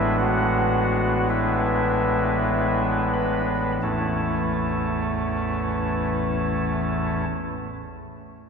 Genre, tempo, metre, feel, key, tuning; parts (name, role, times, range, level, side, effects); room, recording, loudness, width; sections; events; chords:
classical, chorale-style piece for pipe organ; 43-58 BPM; 4/4; rubato; A major; A4 = 440 Hz
chamber organ, soft reed; solo; 0.0-7.3 s; A1 to B5; -21 LUFS; equal
wet church reverb, RT60 3.5 s; heard from further back in the room; -21 LUFS; side -5 dB against mid
0.0-3.8 A section; 3.8-8.5 B section
slowing down 0.0-3.8
0.0 E7/A; 3.8 A